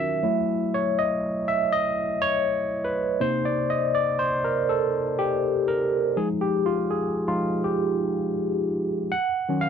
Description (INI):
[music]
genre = R&B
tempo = 81 BPM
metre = 4/4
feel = swing 55% on 16ths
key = unclear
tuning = A4 = 440 Hz
[part]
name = barky tine electric piano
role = solo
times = 0.0-9.7 s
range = C3 to Gb5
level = -22 LUFS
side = equal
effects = overdrive, phaser
[sound]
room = little or no reverb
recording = dry, close 1970s-style studio recording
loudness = -22 LUFS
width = side -7 dB against mid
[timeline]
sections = 0.0-9.7 A section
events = tine electric piano solo 0.0-9.7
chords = 0.2 Gbm7; 3.2 Cm7; 6.2 Fm9; 9.1 Ebm7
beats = | 0.23 0.97 1.71 2.45 | 3.19 3.93 4.67 5.41 | 6.16 6.89 7.64 8.38 | 9.12